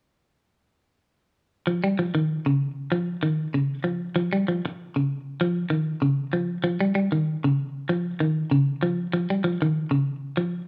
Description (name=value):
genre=afrobeat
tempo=97 BPM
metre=4/4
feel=swing 54% on 16ths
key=unclear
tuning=A4 = 439 Hz
part: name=clean electric guitar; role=arpeggios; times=1.7-10.6 s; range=Db3 to G3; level=-25 LUFS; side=equal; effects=none
room=moderate large studio reverb, RT60 1.1 s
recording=band playing live in one room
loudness=-25 LUFS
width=mono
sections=1.7-10.7 A section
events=none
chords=none